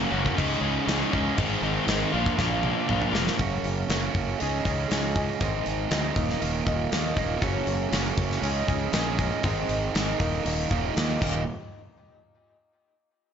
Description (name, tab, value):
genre	quiet-loud alternative rock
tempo	119 BPM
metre	4/4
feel	straight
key	unclear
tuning	A4 = 440 Hz
part	crunchy overdriven guitar	riff	0.0-3.4 s	Gb2 to Ab4	-27 LUFS	left 10 dB	none
part	fuzz guitar	riff	0.0-11.4 s	Eb2 to Ab4	-28 LUFS	right 11 dB	distortion
part	fuzz fingered electric bass	bass	0.0-11.4 s	Eb1 to Eb2	-31 LUFS	left 1 dB	overdrive
part	big rock drum kit	drums	0.3-11.3 s	crash cymbal, hi-hat, kick drum, snare drum, toms	-29 LUFS	left 1 dB	none
part	picked swing-style acoustic guitar	arpeggios	3.4-11.4 s	Eb2 to Ab4	-32 LUFS	left 4 dB	tape echo
room	light reverb, small room ambience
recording	nothing above 7.7 kHz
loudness	-23 LUFS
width	side -8 dB against mid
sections	0.0-3.4 A section; 3.4-11.5 B section; 11.5-13.3 C section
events	drum fill 2.4-3.4, 11.2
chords	0.4 Dbsus2; 1.4 Ab; 2.1 Bb; 3.4 Gb; 4.4 Dbsus2; 5.4 Ab; 6.2 Eb5; 7.4 Gb; 8.4 Dbsus2; 9.4 Ab; 10.2 Eb5; 11.2 Eb; 11.5 N.C.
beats	0.38 0.88 | 1.38 1.88 2.38 2.88 | 3.39 3.89 4.39 4.90 | 5.40 5.91 6.41 6.92 | 7.42 7.93 8.43 8.94 | 9.44 9.95 10.46 10.96